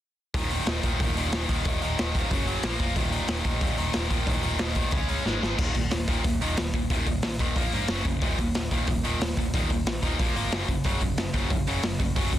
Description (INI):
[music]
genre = punk rock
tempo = 183 BPM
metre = 4/4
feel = straight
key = Eb minor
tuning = A4 = 439 Hz
[part]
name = tight distorted guitar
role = riff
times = 0.3-12.4 s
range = Eb2 to Db4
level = -28 LUFS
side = equal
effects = distortion
[part]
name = picked electric bass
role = bass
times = 0.3-12.4 s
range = Eb1 to Ab2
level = -32 LUFS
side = equal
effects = none
[part]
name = raw garage drum kit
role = drums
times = 0.3-12.4 s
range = crash cymbal, hi-hat, kick drum, snare drum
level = -27 LUFS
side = equal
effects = none
[sound]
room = little or no reverb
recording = dense, heavily limited modern master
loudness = -24 LUFS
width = side -12 dB against mid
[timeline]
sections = 0.3-5.6 A section; 5.6-12.4 B section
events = drum fill 5.3-5.6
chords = 0.3 Eb5; 2.3 Gb5; 2.6 Bb5; 3.0 Eb5; 4.9 Db5; 5.3 Ab5; 5.6 Eb5; 7.6 Bb5; 7.9 Gb5; 8.2 Eb5; 10.2 Bb5; 10.5 Gb5